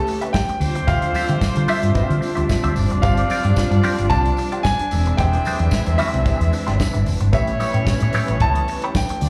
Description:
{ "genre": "disco", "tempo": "112 BPM", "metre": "4/4", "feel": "straight", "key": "unclear", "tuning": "A4 = 440 Hz", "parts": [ { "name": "clear concert grand piano", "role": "melody", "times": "0.0-9.3 s", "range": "E5 to A5", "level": "-27 LUFS", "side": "equal", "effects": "slapback echo, tape echo" }, { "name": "dark studio string section", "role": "sustained chords", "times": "0.0-9.3 s", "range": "E3 to G4", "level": "-28 LUFS", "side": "equal", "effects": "none" }, { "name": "warm horn section", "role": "stabs", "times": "0.0-9.3 s", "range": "E3 to E5", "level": "-31 LUFS", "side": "equal", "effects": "slapback echo" }, { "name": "semi-hollow electric guitar", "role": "accompaniment", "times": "0.1-9.1 s", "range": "G#3 to E5", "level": "-29 LUFS", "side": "equal", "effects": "wah, slapback echo" }, { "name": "damped 70s drum kit", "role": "drums", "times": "0.1-9.3 s", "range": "hi-hat, kick drum, snare drum", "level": "-26 LUFS", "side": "equal", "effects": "none" }, { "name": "tambourine", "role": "percussion", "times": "0.1-9.3 s", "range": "none", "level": "-42 LUFS", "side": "equal", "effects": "none" }, { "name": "congas", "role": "percussion", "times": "0.3-9.3 s", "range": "none", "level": "-34 LUFS", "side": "equal", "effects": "none" }, { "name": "hollow-body short-scale fingered electric bass", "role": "bass", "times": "0.6-9.3 s", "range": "E1 to D3", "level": "-22 LUFS", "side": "equal", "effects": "none" } ], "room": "little or no reverb", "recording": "live gig heard through the venue's PA, club reverb", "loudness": "-19 LUFS", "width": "mono", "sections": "0.0-9.3 A section", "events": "none", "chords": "0.0 A9; 0.6 Dm11; 2.8 G7sus4; 4.9 E7alt; 7.3 A9", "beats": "0.34 | 0.88 1.42 1.96 2.50 | 3.03 3.57 4.11 4.65 | 5.19 5.72 6.26 6.80 | 7.34 7.88 8.41 8.95" }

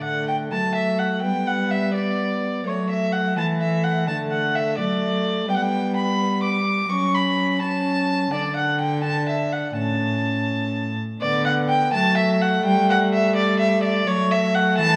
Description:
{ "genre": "classical, renaissance-style consort dance", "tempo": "84 BPM (dotted quarters)", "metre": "6/8", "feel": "straight", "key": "unclear", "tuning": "A4 = 441 Hz", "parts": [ { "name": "dark violin", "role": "melody", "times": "0.0-15.0 s", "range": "C#5 to D6", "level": "-25 LUFS", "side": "equal", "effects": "none" }, { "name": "clear trombone", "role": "accompaniment", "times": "0.0-15.0 s", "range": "A3 to D4", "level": "-29 LUFS", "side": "equal", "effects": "none" }, { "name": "dark cello", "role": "bass", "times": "0.0-15.0 s", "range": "A2 to G3", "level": "-26 LUFS", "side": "equal", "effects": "none" } ], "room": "wet recital hall reverb, RT60 1.5 s", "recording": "recorded in a church or concert hall", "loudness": "-22 LUFS", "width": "mono", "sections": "0.0-11.2 A section; 11.2-15.0 A section", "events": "none", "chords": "0.0 D; 1.2 G; 2.7 F#m; 4.1 D; 5.5 G; 6.9 F#m; 8.3 D; 9.8 A; 11.2 D; 12.6 Em11/G; 14.1 F#m", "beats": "0.52 | 1.23 1.94 | 2.65 3.36 | 4.07 4.78 | 5.49 6.20 | 6.91 7.62 | 8.33 9.04 | 9.77 10.49 | 11.21 11.93 | 12.65 13.36 | 14.07 14.78" }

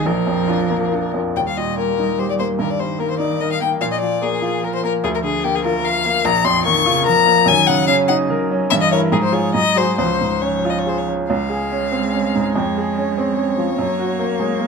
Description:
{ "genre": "quick classical-period movement for piano trio", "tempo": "146 BPM", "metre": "3/4", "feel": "rubato", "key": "Eb major, Db major from 6.3 s", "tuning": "A4 = 440 Hz", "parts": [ { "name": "rich violin", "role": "melody", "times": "0.0-14.7 s", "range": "G4 to Db6", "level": "-19 LUFS", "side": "left 9 dB", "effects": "none" }, { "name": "warm cello", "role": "second line", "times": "0.0-14.7 s", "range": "Db3 to Bb3", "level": "-24 LUFS", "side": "right 6 dB", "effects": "none" }, { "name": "bright baby grand piano", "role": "accompaniment", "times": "0.0-14.7 s", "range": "Bb1 to Bb4", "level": "-19 LUFS", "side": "equal", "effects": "none" } ], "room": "light reverb", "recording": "minimal, uncompressed stereo recording", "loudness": "-16 LUFS", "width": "side -5 dB against mid", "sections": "0.0-1.4 A section; 1.4-11.3 B section; 11.3-14.7 C section", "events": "none", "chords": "0.1 Bb; 1.4 Eb; 2.6 Eb/G; 3.8 Bb5; 5.0 Bb/D; 6.3 Bbm; 7.5 Ebm7/Gb; 8.7 Gm6; 9.1 Db/Ab; 9.5 Ab7; 10.0 Db; 12.6 Db/F; 13.8 Gb", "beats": "| 0.06 0.49 0.93 | 1.36 1.78 2.19 | 2.60 3.01 3.42 | 3.83 4.24 4.64 | 5.04 5.44 5.85 | 6.26 6.67 7.07 | 7.47 7.88 8.30 | 8.71 9.12 9.55 | 9.99 10.43 10.87 | 11.30 11.72 12.14 | 12.55 12.97 13.38 | 13.79 14.19 14.60" }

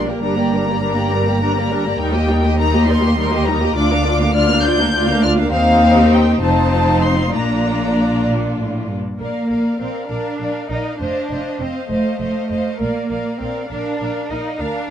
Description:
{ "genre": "quick classical-period movement for string orchestra", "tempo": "67 BPM (dotted quarters)", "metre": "6/8", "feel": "straight", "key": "Bb major", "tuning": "A4 = 440 Hz", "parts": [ { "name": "rich chamber violin section", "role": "second line", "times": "0.0-14.9 s", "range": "F4 to F5", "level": "-24 LUFS", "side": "left 2 dB", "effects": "none" }, { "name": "dark studio viola section", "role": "accompaniment", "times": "0.0-14.9 s", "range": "G3 to C5", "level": "-20 LUFS", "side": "equal", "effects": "none" }, { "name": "dark chamber double bass section", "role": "bass", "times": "0.0-14.7 s", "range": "F1 to Eb2", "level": "-21 LUFS", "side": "equal", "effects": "none" }, { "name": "rich symphonic cello section", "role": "bass", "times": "0.0-14.9 s", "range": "D2 to Eb4", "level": "-22 LUFS", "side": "right 1 dB", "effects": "none" }, { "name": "rich chamber violin section", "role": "melody", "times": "0.2-14.9 s", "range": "F5 to G6", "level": "-22 LUFS", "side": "left 2 dB", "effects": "none" } ], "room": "light reverb", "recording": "dark, warm production", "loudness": "-15 LUFS", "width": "side -9 dB against mid", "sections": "0.0-9.2 A section; 9.2-14.9 B section", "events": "none", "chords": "0.2 Gm; 2.0 Eb; 3.8 Bb/D; 5.5 Cm/Eb; 6.4 F7; 7.4 Bb; 11.0 F7; 12.8 Bb", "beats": "| 0.23 1.12 | 2.00 2.89 | 3.77 4.65 | 5.54 6.44 | 7.35 8.28 | 9.20 10.10 | 11.01 11.90 | 12.80 13.70 | 14.59" }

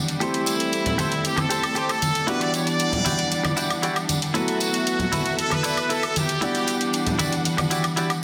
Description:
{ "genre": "nu-disco, nu disco", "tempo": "116 BPM", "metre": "4/4", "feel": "straight", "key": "E minor", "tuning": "A4 = 440 Hz", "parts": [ { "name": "warm grand piano", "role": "accompaniment", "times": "0.0-8.2 s", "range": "E3 to F#5", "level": "-31 LUFS", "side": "equal", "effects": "low-pass filter, dub echo" }, { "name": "rich studio string section", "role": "sustained chords", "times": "0.0-8.2 s", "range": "E3 to F#5", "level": "-32 LUFS", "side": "equal", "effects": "none" }, { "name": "electronic hi-hat and woodblock", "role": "drums", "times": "0.1-8.2 s", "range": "none", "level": "-30 LUFS", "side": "equal", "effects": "studio reverb" }, { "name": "tambourine and congas", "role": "percussion", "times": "0.1-8.2 s", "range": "none", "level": "-30 LUFS", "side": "equal", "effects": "none" }, { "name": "brilliant trumpet section", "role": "melody", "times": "0.2-7.2 s", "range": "E4 to D5", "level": "-29 LUFS", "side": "equal", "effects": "dub echo" }, { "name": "direct-recorded clean electric guitar", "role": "riff", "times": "0.2-8.1 s", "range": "E4 to D5", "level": "-32 LUFS", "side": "equal", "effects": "lush chorus, dub echo" } ], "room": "wet echo chamber reverb, RT60 1.4 s", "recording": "dense, heavily limited modern master", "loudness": "-23 LUFS", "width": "mono", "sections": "0.0-8.2 A section", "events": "filter sweep on grand piano 0.0-8.2", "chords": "0.2 Am7; 2.3 Em9; 4.3 B7sus4; 6.4 Em9", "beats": "| 0.21 0.73 1.25 1.76 | 2.28 2.80 3.32 3.83 | 4.35 4.87 5.38 5.90 | 6.42 6.94 7.45 7.97" }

